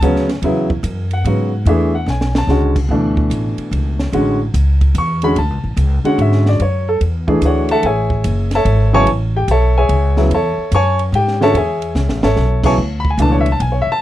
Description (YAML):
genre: modal jazz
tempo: 146 BPM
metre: 3/4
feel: swing 66% on 8ths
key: A major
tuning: A4 = 441 Hz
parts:
  - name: warm grand piano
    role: accompaniment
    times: 0.0-14.0 s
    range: B2 to C#6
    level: -16 LUFS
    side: equal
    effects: none
  - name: upright bass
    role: bass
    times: 0.0-13.9 s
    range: F#1 to G#2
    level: -16 LUFS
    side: equal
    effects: none
  - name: compact cocktail drum kit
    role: drums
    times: 0.0-13.7 s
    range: crash cymbal, hi-hat, kick drum, ride cymbal, snare drum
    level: -25 LUFS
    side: right 1 dB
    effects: none
room: little or no reverb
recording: dark, warm production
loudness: -13 LUFS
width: side -14 dB against mid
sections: 0.0-14.0 A section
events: drum fill 2.1-2.5, 12.0-12.4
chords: 0.0 Amaj9; 2.9 Dmaj9; 7.8 Amaj9